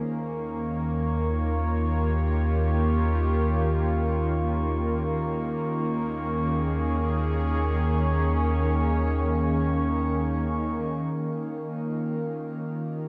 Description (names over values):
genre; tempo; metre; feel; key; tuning
ambient; free time; none; none; Eb mixolydian; A4 = 440 Hz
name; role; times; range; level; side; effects
warm analog pad; sustained chords; 0.0-13.1 s; Eb3 to Db5; -29 LUFS; equal; chorus, tremolo, shimmer reverb
glass harmonica; texture; 0.0-13.1 s; Db4 to F6; -38 LUFS; equal; shimmer reverb
round analog bass; bass; 0.1-11.1 s; Eb2; -29 LUFS; equal; none
room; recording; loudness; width
wet huge ambient reverb, RT60 8.3 s; studio reverb; -26 LUFS; mono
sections
0.0-11.1 A section; 11.1-13.1 B section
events
fade-in on glass harmonica 0.0-11.1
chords
0.1 Eb7; 5.6 Bbm7/Eb; 11.1 Ebsus2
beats
free time